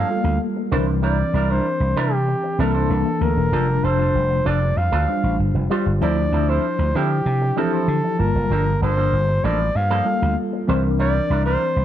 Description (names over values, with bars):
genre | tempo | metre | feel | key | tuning
pop | 96 BPM | 4/4 | straight | G dorian | A4 = 442 Hz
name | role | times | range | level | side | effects
warm flugelhorn | melody | 0.0-11.8 s | G4 to F5 | -24 LUFS | equal | none
tine electric piano | accompaniment | 0.0-11.8 s | D3 to A5 | -24 LUFS | left 3 dB | overdrive, fast stereo tremolo, wide subtle chorus
electric guitar with an envelope filter | riff | 0.0-11.8 s | F3 to C5 | -27 LUFS | right 6 dB | lush chorus
vintage slap bass | bass | 0.0-11.8 s | E1 to D3 | -20 LUFS | equal | none
room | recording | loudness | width
little or no reverb | dry, close 1970s-style studio recording | -17 LUFS | side -11 dB against mid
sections
0.0-11.8 A section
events
none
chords
0.0 Gm9; 0.7 C9; 2.9 C13; 3.5 F69; 6.0 Dm9; 8.2 Gm9; 10.7 C9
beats
0.40 | 1.03 1.65 2.27 2.90 | 3.52 4.14 4.77 5.39 | 6.01 6.63 7.26 7.88 | 8.50 9.12 9.75 10.37 | 10.99 11.61